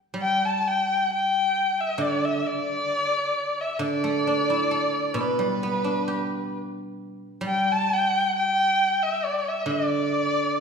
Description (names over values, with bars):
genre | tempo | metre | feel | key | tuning
chinese traditional, Chinese chamber ensemble | 66 BPM | 4/4 | straight | G gong mode | A4 = 436 Hz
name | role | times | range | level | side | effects
guzheng | accompaniment | 0.0-10.6 s | B2 to D5 | -28 LUFS | right 2 dB | none
dark erhu | melody | 0.2-10.6 s | B4 to A5 | -23 LUFS | left 1 dB | none
room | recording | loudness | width
wet recital hall reverb, RT60 1.5 s | recorded in a church or concert hall | -22 LUFS | side -6 dB against mid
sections
0.2-10.6 A section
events
none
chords
none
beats
| 0.18 1.10 2.01 2.92 | 3.83 4.74 5.64 6.54 | 7.44 8.33 9.23 10.13